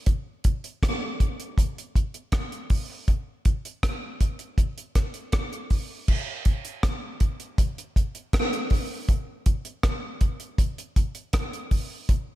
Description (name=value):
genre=reggae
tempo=80 BPM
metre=4/4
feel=straight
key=none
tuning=none
part: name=deep reggae drum kit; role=drums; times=0.1-12.3 s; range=crash cymbal, hi-hat, kick drum, rim click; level=-24 LUFS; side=equal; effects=none
room=light reverb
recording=none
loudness=-24 LUFS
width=side -16 dB against mid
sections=0.0-6.1 A section; 6.1-12.4 B section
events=none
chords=none